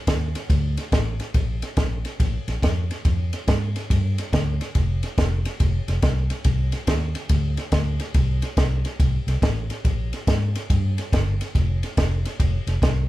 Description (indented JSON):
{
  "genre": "electric blues shuffle",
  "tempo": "141 BPM",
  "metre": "4/4",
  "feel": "swing 65% on 8ths",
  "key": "unclear",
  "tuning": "A4 = 436 Hz",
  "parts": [
    { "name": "vintage muted fingered electric bass", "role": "bass", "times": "0.1-13.1 s", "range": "F1 to Ab2", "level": "-23 LUFS", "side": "equal", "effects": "none" },
    { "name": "compact cocktail drum kit", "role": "drums", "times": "0.1-13.0 s", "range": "kick drum, ride cymbal, snare drum", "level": "-22 LUFS", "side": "equal", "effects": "none" }
  ],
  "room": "light reverb",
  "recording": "band playing live in one room",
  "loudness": "-20 LUFS",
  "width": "side -16 dB against mid",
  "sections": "0.0-13.1 A section",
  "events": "none",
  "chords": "none",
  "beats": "0.07 0.50 0.92 | 1.35 1.77 2.20 2.62 | 3.05 3.47 3.90 4.32 | 4.75 5.17 5.60 6.02 | 6.45 6.87 7.30 7.72 | 8.15 8.57 9.00 9.42 | 9.85 10.27 10.70 11.12 | 11.54 11.97 12.39 12.82"
}